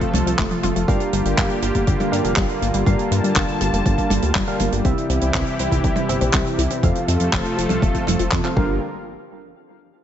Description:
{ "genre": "italo disco", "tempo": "121 BPM", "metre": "4/4", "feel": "straight", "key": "G dorian", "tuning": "A4 = 440 Hz", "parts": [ { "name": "warm analog pad", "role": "sustained chords", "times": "0.0-8.8 s", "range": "C3 to A5", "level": "-24 LUFS", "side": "equal", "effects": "chorus" }, { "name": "chorused polysynth", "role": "stabs", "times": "0.0-8.8 s", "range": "C3 to F5", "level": "-26 LUFS", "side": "right 1 dB", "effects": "ping-pong delay" }, { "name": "electronic kick drum", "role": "drums", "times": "0.0-8.7 s", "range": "none", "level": "-22 LUFS", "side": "equal", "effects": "overdrive" }, { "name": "tight funk drum kit", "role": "drums", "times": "0.0-8.5 s", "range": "handclaps, hi-hat, toms", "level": "-25 LUFS", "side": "right 2 dB", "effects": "none" }, { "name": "analog pluck", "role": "arpeggios", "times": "0.1-8.8 s", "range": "F2 to C5", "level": "-28 LUFS", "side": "left 2 dB", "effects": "chorus, ping-pong delay" }, { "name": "chorused synth bass", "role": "bass", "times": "0.1-8.8 s", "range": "F1 to G2", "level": "-23 LUFS", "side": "equal", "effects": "none" } ], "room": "light reverb", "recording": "nothing above 7.8 kHz", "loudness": "-17 LUFS", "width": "side -10 dB against mid", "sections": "0.0-8.8 A section; 8.8-10.0 B section", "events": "filter sweep on synth arpeggio sound 0.0-8.8; filter sweep on analog polysynth 0.0-8.8", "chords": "0.0 F; 0.9 Gm7; 4.8 C; 6.8 F; 8.6 Gm7; 8.8 N.C.", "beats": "0.39 | 0.88 1.38 1.87 2.37 | 2.87 3.36 3.86 4.35 | 4.85 5.34 5.84 6.34 | 6.83 7.33 7.82 8.32" }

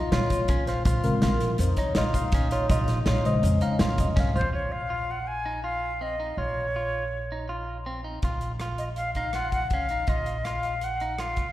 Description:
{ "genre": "progressive instrumental, band music in an uneven meter", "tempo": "163 BPM", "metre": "5/4", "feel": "straight", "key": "unclear", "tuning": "A4 = 441 Hz", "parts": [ { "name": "clear trombone", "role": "second line", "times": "0.0-4.4 s", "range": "Db4 to F4", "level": "-34 LUFS", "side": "left 4 dB", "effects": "slapback echo" }, { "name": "mellow tine electric piano", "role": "accompaniment", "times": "0.0-4.5 s", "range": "Db3 to F5", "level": "-28 LUFS", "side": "left 2 dB", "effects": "phaser" }, { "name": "clean electric guitar", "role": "arpeggios", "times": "0.0-11.5 s", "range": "C4 to F4", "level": "-34 LUFS", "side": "right 1 dB", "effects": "slapback echo, tape echo" }, { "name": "upright bass", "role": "bass", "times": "0.1-11.5 s", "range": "F1 to Bb2", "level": "-29 LUFS", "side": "equal", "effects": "none" }, { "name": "modern studio drum kit", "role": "drums", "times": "0.1-4.5, 8.2-11.5 s", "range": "hi-hat, kick drum, rim click, snare drum, toms", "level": "-27 LUFS", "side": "equal", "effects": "none" }, { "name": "tube shaker", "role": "percussion", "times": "0.3-4.5 s", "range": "none", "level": "-46 LUFS", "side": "left 2 dB", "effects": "none" }, { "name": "breathy silver concert flute", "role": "melody", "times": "4.4-11.5 s", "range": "C5 to Ab5", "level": "-29 LUFS", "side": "left 1 dB", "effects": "slapback echo" } ], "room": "light reverb", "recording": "live gig heard through the venue's PA, recital hall reverb", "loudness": "-24 LUFS", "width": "side -14 dB against mid", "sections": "0.0-4.5 A section; 4.5-11.5 B section", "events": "tine electric piano solo 0.0-4.5; drum fill 4.2-4.5", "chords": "0.0 Bbm7; 4.5 Db/Bb; 8.2 Ebmadd9/Bb", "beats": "0.13 0.50 | 0.86 1.23 1.60 1.97 2.33 | 2.70 3.07 3.44 3.81 4.17 | 4.54 4.91 5.28 5.65 6.02 | 6.39 6.76 7.13 7.50 7.87 | 8.24 8.61 8.98 9.35 9.71 | 10.08 10.45 10.82 11.19" }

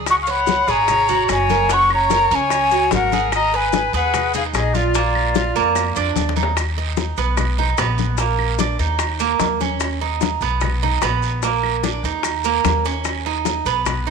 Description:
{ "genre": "latin, Cuban son and guajira", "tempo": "148 BPM", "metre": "4/4", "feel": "straight", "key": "Eb minor", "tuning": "A4 = 440 Hz", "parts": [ { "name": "Cuban tres", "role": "arpeggios", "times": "0.0-14.1 s", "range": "Bb3 to Db5", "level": "-21 LUFS", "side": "right 9 dB", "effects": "none" }, { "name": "upright bass", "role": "bass", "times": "0.0-14.1 s", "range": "Gb1 to F2", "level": "-24 LUFS", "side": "equal", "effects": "none" }, { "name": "breathy concert flute", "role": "melody", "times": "0.1-6.2 s", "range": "D5 to Db6", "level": "-18 LUFS", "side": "equal", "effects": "none" }, { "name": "bright trumpet", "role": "second line", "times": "0.1-6.2 s", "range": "F4 to Gb5", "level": "-23 LUFS", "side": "left 11 dB", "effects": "none" }, { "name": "bongos", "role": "percussion", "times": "0.1-14.1 s", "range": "none", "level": "-27 LUFS", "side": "left 12 dB", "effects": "none" }, { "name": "claves", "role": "percussion", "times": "0.1-14.1 s", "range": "none", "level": "-31 LUFS", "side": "right 12 dB", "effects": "none" }, { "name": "congas", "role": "percussion", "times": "0.1-14.1 s", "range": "none", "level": "-27 LUFS", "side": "left 14 dB", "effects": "none" }, { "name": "guiro", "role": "percussion", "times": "0.1-14.1 s", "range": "none", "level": "-33 LUFS", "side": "right 12 dB", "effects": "none" }, { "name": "maracas", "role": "percussion", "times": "0.1-14.1 s", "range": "none", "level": "-33 LUFS", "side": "left 16 dB", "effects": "none" } ], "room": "moderate echo chamber reverb, RT60 1.7 s, small room ambience", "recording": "1960s-style stereo with parts hard left and right", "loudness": "-16 LUFS", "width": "side -5 dB against mid", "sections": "0.0-6.6 A section; 6.6-14.1 B section", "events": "drum fill 5.8-6.6", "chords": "0.1 Gb; 3.3 Abm; 4.9 Bb; 6.6 B; 8.2 Bb; 9.0 Eb5; 10.6 B; 11.4 Bb; 12.2 Eb5", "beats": "| 0.08 0.48 0.89 1.29 | 1.70 2.11 2.51 2.92 | 3.32 3.73 4.13 4.54 | 4.95 5.35 5.76 6.16 | 6.57 6.97 7.38 7.78 | 8.19 8.59 9.00 9.40 | 9.81 10.21 10.62 11.03 | 11.43 11.84 12.24 12.65 | 13.05 13.46 13.86" }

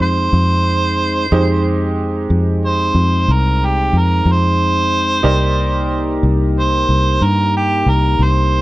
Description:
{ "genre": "slow blues", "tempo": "61 BPM (dotted quarters)", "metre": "12/8", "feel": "straight", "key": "unclear", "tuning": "A4 = 442 Hz", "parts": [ { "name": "mellow harmonica", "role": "melody", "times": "0.0-8.6 s", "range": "G4 to C5", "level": "-18 LUFS", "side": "right 2 dB", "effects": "overdrive" }, { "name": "bright upright piano", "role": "accompaniment", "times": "0.0-8.6 s", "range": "Ab3 to D5", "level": "-24 LUFS", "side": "right 4 dB", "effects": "none" }, { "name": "mellow tonewheel organ", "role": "sustained chords", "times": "0.0-8.6 s", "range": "Ab3 to G4", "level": "-22 LUFS", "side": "left 2 dB", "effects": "slow rotary speaker" }, { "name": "fingered electric bass", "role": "bass", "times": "0.0-8.6 s", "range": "C2 to G2", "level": "-15 LUFS", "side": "equal", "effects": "none" } ], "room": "moderate studio reverb, RT60 0.8 s", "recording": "none", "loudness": "-13 LUFS", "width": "side -17 dB against mid", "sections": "0.0-8.6 A section", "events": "harmonica solo 0.0-8.6", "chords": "0.0 Fm9; 5.2 Cm9", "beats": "0.32 | 1.31 2.29 3.28 4.26 | 5.25 6.23 7.21 8.20" }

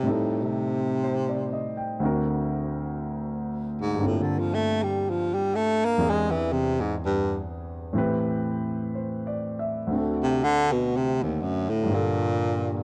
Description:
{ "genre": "jazz ballad", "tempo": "61 BPM", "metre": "4/4", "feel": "swing 68% on 8ths", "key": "G minor", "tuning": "A4 = 440 Hz", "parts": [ { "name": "breathy baritone saxophone", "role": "melody", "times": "0.0-12.8 s", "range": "Eb2 to Bb3", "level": "-27 LUFS", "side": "equal", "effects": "none" }, { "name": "warm grand piano", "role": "accompaniment", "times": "0.0-12.8 s", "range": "D2 to G5", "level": "-30 LUFS", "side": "equal", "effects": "none" } ], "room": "small room ambience", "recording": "dry, close 1970s-style studio recording", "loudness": "-26 LUFS", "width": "mono", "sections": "0.0-12.8 A section", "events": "baritone saxophone solo 0.0-12.8", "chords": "0.0 Am7b5; 2.0 D7b13; 4.0 Gm11; 6.0 E7alt; 7.9 Am7; 9.9 D7; 11.9 Gm9", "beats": "| 0.04 1.03 2.01 3.00 | 3.99 4.99 5.97 6.96 | 7.95 8.93 9.91 10.89 | 11.87" }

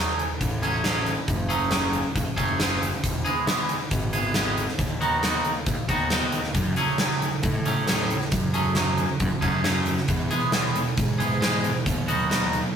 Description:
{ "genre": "quiet-loud alternative rock", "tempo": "136 BPM", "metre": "4/4", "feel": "straight", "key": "unclear", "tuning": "A4 = 440 Hz", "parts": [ { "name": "twangy electric guitar", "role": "arpeggios", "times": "0.0-12.6 s", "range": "D#3 to G#4", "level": "-26 LUFS", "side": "right 1 dB", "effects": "phaser" }, { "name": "huge arena drum kit", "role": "drums", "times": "0.2-12.6 s", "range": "hi-hat, kick drum, snare drum", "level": "-26 LUFS", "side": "equal", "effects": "none" }, { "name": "fuzz picked electric bass", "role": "bass", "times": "0.4-12.6 s", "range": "E1 to A2", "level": "-28 LUFS", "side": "equal", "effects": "overdrive" }, { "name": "thick fuzz guitar", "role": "riff", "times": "6.5-12.7 s", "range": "E2 to B3", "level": "-28 LUFS", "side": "right 3 dB", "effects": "distortion" } ], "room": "moderate studio reverb, RT60 0.5 s", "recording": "rough rehearsal-room recording, warm saturation", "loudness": "-22 LUFS", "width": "side -8 dB against mid", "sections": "0.0-12.8 A section", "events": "none", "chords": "0.0 F#madd9; 3.0 E; 4.8 B/D#; 6.5 F#madd9; 10.1 E; 11.9 B/D#", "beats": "0.41 0.84 | 1.28 1.72 2.15 2.59 | 3.03 3.47 3.91 4.35 | 4.79 5.23 5.67 6.11 | 6.55 6.99 7.43 7.87 | 8.32 8.76 9.20 9.65 | 10.09 10.53 10.97 11.42 | 11.86 12.30" }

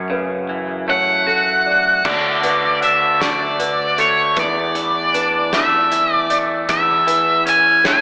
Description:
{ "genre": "post-rock", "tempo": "52 BPM (dotted quarters)", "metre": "6/8", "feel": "straight", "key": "unclear", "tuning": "A4 = 440 Hz", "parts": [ { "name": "twangy electric guitar", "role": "arpeggios", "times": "0.0-8.0 s", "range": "E2 to F#4", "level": "-22 LUFS", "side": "equal", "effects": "spring reverb, slapback echo, tape echo" }, { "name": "growling picked electric bass", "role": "bass", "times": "0.0-8.0 s", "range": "D2 to F#2", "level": "-28 LUFS", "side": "equal", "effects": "overdrive" }, { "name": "felt-muted upright piano", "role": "arpeggios", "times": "0.1-8.0 s", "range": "A4 to C#6", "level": "-27 LUFS", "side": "equal", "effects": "tape echo" }, { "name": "octave-fuzz lead guitar", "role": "melody", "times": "0.9-8.0 s", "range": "C#5 to G#5", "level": "-15 LUFS", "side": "equal", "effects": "distortion, tape echo" }, { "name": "loose indie drum kit", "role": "drums", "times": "2.0-8.0 s", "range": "crash cymbal, hi-hat, kick drum, snare drum", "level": "-23 LUFS", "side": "equal", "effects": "none" } ], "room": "wet concert hall reverb, RT60 2.0 s, small room ambience", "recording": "big arena sound, AM radio sound", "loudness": "-14 LUFS", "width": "side -39 dB against mid", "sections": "0.0-2.0 A section; 2.0-8.0 B section", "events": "none", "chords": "0.0 F#m7; 2.0 D5; 4.4 E7sus4; 6.7 Amaj7/E", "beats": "0.89 | 2.05 3.21 | 4.37 5.53 | 6.69 7.85" }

